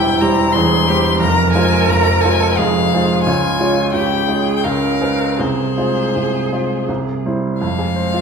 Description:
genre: classical, slow romantic movement for piano trio.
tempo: 78-91 BPM.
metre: 3/4.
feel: rubato.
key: F minor.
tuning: A4 = 441 Hz.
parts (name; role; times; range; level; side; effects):
rich violin; melody; 0.0-8.2 s; C5 to C6; -20 LUFS; left 6 dB; none.
rich cello; second line; 0.0-8.2 s; Ab3 to Bb4; -21 LUFS; right 5 dB; none.
clear baby grand piano; accompaniment; 0.0-8.2 s; E1 to Db5; -16 LUFS; right 1 dB; none.
room: wet recital hall reverb, RT60 1.3 s.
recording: heard from further back in the room.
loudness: -14 LUFS.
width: side -6 dB against mid.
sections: 0.0-7.6 A section.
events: none.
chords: 0.0 C/E; 1.2 Fm; 3.2 Db; 4.6 Db7; 5.4 Fm/C; 6.9 C; 7.6 Fm.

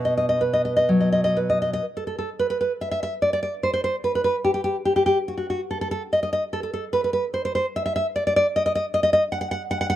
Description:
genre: romantic piece for solo classical guitar.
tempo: 73 BPM.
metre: 2/4.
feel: uneven beats, rubato.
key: unclear.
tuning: A4 = 440 Hz.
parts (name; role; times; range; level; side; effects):
nylon-string guitar; solo; 0.0-10.0 s; B2 to F#5; -21 LUFS; equal; none.
room: small room ambience.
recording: dry, close 1970s-style studio recording.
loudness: -21 LUFS.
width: side -12 dB against mid.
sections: 0.0-1.8 A section; 1.8-10.0 B section.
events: none.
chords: 0.0 B5; 1.8 N.C..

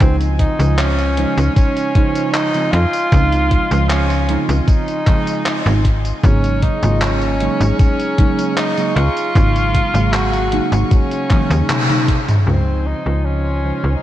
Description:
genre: vaporwave.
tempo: 77 BPM.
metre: 4/4.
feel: straight.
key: Db major.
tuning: A4 = 440 Hz.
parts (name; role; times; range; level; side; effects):
mellow tenor saxophone; melody; 0.0-14.0 s; C4 to Gb4; -20 LUFS; equal; tape echo.
warbly lo-fi synth keys; accompaniment; 0.0-14.0 s; Db3 to F5; -21 LUFS; right 2 dB; analog chorus, ping-pong delay.
rich chamber string section; sustained chords; 0.0-14.0 s; F4 to Db6; -28 LUFS; left 1 dB; none.
slap-like FM bass; bass; 0.0-14.0 s; Ab1 to F2; -16 LUFS; equal; none.
electronic kick drum; drums; 0.0-12.2 s; none; -14 LUFS; equal; none.
gated 80s digital drum machine; drums; 0.0-12.4 s; handclaps, hi-hat, tambourine, toms; -22 LUFS; left 1 dB; gated reverb.
room: moderate lush hall reverb, RT60 2.6 s.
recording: dreamy mix soaked in reverb, cassette tape.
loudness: -13 LUFS.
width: side -13 dB against mid.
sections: 0.0-12.5 A section; 12.5-14.0 B section.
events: drum fill 11.3-12.5; band accent 11.7-12.1.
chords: 0.0 Dbmaj9; 6.2 Ab9sus4; 12.5 Dbmaj9.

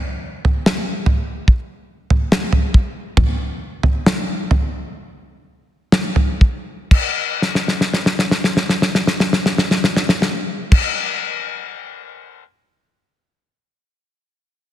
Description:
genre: pop.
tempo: 59-74 BPM.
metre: 4/4.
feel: straight.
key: none.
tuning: none.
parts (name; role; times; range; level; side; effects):
damped 70s drum kit; drums; 0.4-12.4 s; crash cymbal, kick drum, snare drum, toms; -15 LUFS; equal; none.
room: moderate concert hall reverb, RT60 2.0 s.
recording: dense, heavily limited modern master.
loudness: -16 LUFS.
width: side -12 dB against mid.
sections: 0.0-6.9 A section; 6.9-11.0 B section.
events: slowing down 0.0-6.9; drum fill 7.4-10.7.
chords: none.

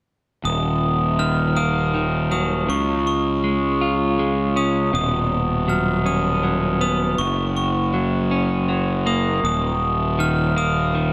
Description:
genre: rock.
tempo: 53 BPM (dotted quarters).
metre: 6/8.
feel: straight.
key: Eb minor.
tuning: A4 = 438 Hz.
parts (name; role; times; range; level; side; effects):
clean electric guitar; arpeggios; 0.4-11.1 s; Eb2 to F4; -26 LUFS; equal; analog delay.
glockenspiel with brass mallets; arpeggios; 0.5-11.1 s; Db6 to F6; -26 LUFS; equal; analog delay, slapback echo.
fuzz fingered electric bass; bass; 0.5-11.1 s; Eb1 to Db2; -24 LUFS; equal; overdrive.
room: wet lush hall reverb, RT60 1.9 s, studio ambience.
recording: big arena sound.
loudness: -21 LUFS.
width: mono.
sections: 0.4-11.1 A section.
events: none.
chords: 0.4 Ebm; 2.7 Db; 4.9 Badd9/D#; 7.2 Gb; 9.4 Eb5.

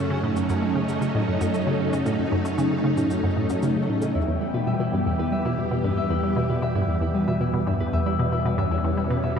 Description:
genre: ambient, sequencer-driven space music.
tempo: 115 BPM.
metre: 4/4.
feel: straight.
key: F# dorian, E dorian from 4.1 s.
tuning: A4 = 440 Hz.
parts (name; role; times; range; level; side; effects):
phased string machine; sustained chords; 0.0-9.4 s; E3 to G4; -25 LUFS; equal; ensemble chorus, phaser.
resonant blip pluck; riff; 0.0-9.4 s; E2 to A3; -25 LUFS; equal; chorus, tape echo.
analog drone; bass; 0.0-9.4 s; E2 to F#2; -34 LUFS; equal; chorus.
pulsing gated texture; texture; 0.0-9.4 s; D3 to D6; -40 LUFS; right 2 dB; none.
bongos and cabasa; percussion; 0.4-4.1 s; none; -44 LUFS; right 2 dB; tape echo.
Celtic harp; arpeggios; 4.1-9.4 s; E4 to E5; -30 LUFS; left 4 dB; auto-pan, tape echo.
room: wet cathedral reverb, RT60 6.8 s.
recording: dreamy mix soaked in reverb.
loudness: -21 LUFS.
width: side -7 dB against mid.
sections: 0.0-4.1 A section; 4.1-9.4 B section.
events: none.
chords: 0.0 F#m; 4.1 Em.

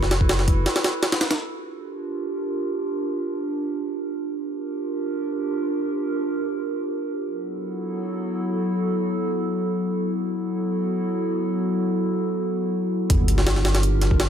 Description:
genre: drum and bass, jungle.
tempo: free time.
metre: none.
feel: none.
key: unclear.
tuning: A4 = 440 Hz.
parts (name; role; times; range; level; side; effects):
warbly tape-like pad; sustained chords; 0.0-14.3 s; F#3 to B4; -24 LUFS; right 1 dB; chorus, built-in reverb.
soft dub sub bass; bass; 0.0-0.7, 13.1-14.3 s; F#1 to G1; -21 LUFS; equal; tube saturation.
jungle sampler-style drum kit; drums; 0.0-1.4, 13.1-14.3 s; hi-hat, kick drum, snare drum; -21 LUFS; equal; overdrive.
sub drop; sound effects; 13.2-14.3 s; none; -28 LUFS; equal; none.
room: light reverb, digital ambience.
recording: none.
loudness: -22 LUFS.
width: side -8 dB against mid.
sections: 0.0-1.4 A section; 1.4-13.1 B section; 13.1-14.3 A section.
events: drop 0.0-1.4, 13.1-14.3; impact 13.1-14.3.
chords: 0.0 Esus24; 1.4 Gm7; 7.2 B7sus4/F#; 13.1 Gm7.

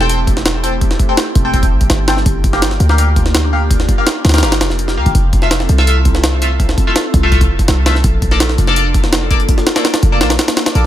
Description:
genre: drum and bass, jungle.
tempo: 166 BPM.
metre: 4/4.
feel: straight.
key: unclear.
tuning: A4 = 442 Hz.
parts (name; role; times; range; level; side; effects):
airy breathy pad; sustained chords; 0.0-10.9 s; A3 to A4; -22 LUFS; equal; chorus, phaser.
band-passed chord stab; stabs; 0.0-10.9 s; A3 to G5; -19 LUFS; left 2 dB; phaser, lush chorus, vintage 12-bit sampler grit, dub echo.
warm 808-style bass; bass; 0.0-10.9 s; E1 to D2; -14 LUFS; equal; tube saturation.
jungle sampler-style drum kit; drums; 0.0-10.8 s; hi-hat, kick drum, snare drum; -14 LUFS; equal; none.
room: digital ambience.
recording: none.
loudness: -10 LUFS.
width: side -12 dB against mid.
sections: 0.0-10.9 A section.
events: none.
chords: 0.0 Am7; 2.3 Gm7; 5.2 Fmaj7; 8.0 Bbmaj7.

